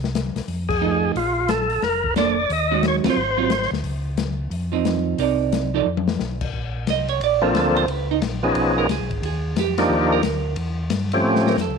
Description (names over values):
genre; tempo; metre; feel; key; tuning
soul jazz organ trio; 178 BPM; 4/4; swing 64% on 8ths; Bb major; A4 = 440 Hz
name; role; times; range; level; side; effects
mellow tonewheel organ; bass; 0.0-11.8 s; F1 to A2; -26 LUFS; equal; chorus vibrato, slow rotary speaker
open jazz drum kit; drums; 0.0-11.7 s; crash cymbal, hi-hat, kick drum, ride cymbal, snare drum, toms; -27 LUFS; left 8 dB; none
percussive tonewheel organ; melody; 0.7-3.7, 7.4-11.6 s; F3 to Eb5; -20 LUFS; left 1 dB; slow rotary speaker, overdrive
vintage hollow-body jazz guitar; accompaniment; 0.8-11.8 s; Eb3 to Eb5; -23 LUFS; right 12 dB; none
room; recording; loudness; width
light reverb, studio ambience; 1960s-style stereo with parts hard left and right; -19 LUFS; side -5 dB against mid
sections
0.0-6.5 A section; 6.5-11.8 B section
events
band accent 0.7, 3.0; drum fill 5.9-6.2, 11.2-11.6; hollow-body jazz guitar solo 6.5-11.8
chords
0.5 F7; 1.2 Bbmaj9; 2.5 Ebm11; 3.2 Ab6; 3.8 Dbmaj9; 5.2 Cm9; 5.9 N.C.; 6.5 Bbmaj9; 7.9 Db9; 9.2 Ebmaj9; 10.6 Emadd11; 11.2 A7alt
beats
0.15 0.48 0.82 | 1.16 1.49 1.83 2.16 | 2.50 2.84 3.17 3.51 | 3.85 4.18 4.52 4.86 | 5.19 5.53 5.87 6.20 | 6.54 6.88 7.21 7.55 | 7.88 8.22 8.56 8.89 | 9.23 9.57 9.90 10.24 | 10.57 10.91 11.25 11.58